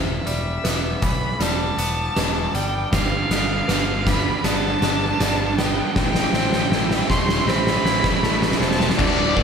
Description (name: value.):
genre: post-rock.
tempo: 79 BPM.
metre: 4/4.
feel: straight.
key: unclear.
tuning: A4 = 441 Hz.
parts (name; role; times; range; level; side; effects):
rich violin; melody; 0.0-9.4 s; D5 to C6; -25 LUFS; equal; slapback echo, tape echo.
felt-muted upright piano; arpeggios; 0.0-9.4 s; A4 to D5; -34 LUFS; right 4 dB; slapback echo, tape echo.
twangy electric guitar; arpeggios; 0.0-9.0 s; E2 to E4; -31 LUFS; left 3 dB; spring reverb, slapback echo, tape echo.
fuzz picked electric bass; bass; 0.0-9.4 s; D1 to B1; -26 LUFS; left 1 dB; overdrive.
oversized low-tuned drum kit; drums; 0.3-9.4 s; crash cymbal, hi-hat, kick drum, snare drum; -21 LUFS; equal; none.
distorted electric guitar; riff; 2.9-9.4 s; D2 to E3; -27 LUFS; right 7 dB; distortion, slapback echo.
tight distorted guitar; riff; 9.0-9.4 s; D2 to D3; -23 LUFS; left 9 dB; distortion, slapback echo.
room: moderate concert hall reverb, RT60 2.0 s, small room ambience.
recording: big arena sound.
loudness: -18 LUFS.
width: side -6 dB against mid.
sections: 0.0-9.0 A section.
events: build-up 0.0-9.0; drum fill 0.0-9.0.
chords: 0.0 Em7; 2.9 G7; 6.0 Am7.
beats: 0.66 1.42 2.17 | 2.94 3.69 4.45 5.21 | 5.97 6.72 7.48 8.23 | 8.99.